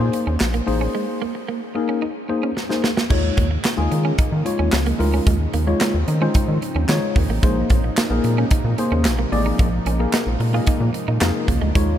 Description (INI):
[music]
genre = early-eighties boogie funk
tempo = 111 BPM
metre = 4/4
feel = straight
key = unclear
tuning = A4 = 439 Hz
[part]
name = tine electric piano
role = accompaniment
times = 0.0-12.0 s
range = Ab3 to D5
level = -23 LUFS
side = left 3 dB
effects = lush chorus
[part]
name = rubbery square bass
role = bass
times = 0.0-12.0 s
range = A1 to Eb3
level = -20 LUFS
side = equal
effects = none
[part]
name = clean electric guitar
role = riff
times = 0.1-11.9 s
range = Ab3 to F4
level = -28 LUFS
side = right 7 dB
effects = analog chorus
[part]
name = modern studio drum kit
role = drums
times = 0.1-11.9 s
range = crash cymbal, handclaps, hi-hat, kick drum, snare drum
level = -22 LUFS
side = equal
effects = none
[part]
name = lush unison pad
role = sustained chords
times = 3.1-12.0 s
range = C3 to Eb4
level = -29 LUFS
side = equal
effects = chorus
[sound]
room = light reverb, studio ambience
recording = none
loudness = -17 LUFS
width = side -10 dB against mid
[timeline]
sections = 0.0-3.1 A section; 3.1-12.0 B section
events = break 0.9-3.1; drum fill 2.6-3.1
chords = 0.0 Bb9sus4; 3.1 Eb9sus4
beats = 0.40 | 0.94 1.48 2.02 2.56 | 3.10 3.65 4.19 4.73 | 5.27 5.81 6.35 6.89 | 7.43 7.97 8.51 9.05 | 9.59 10.13 10.67 11.21 | 11.75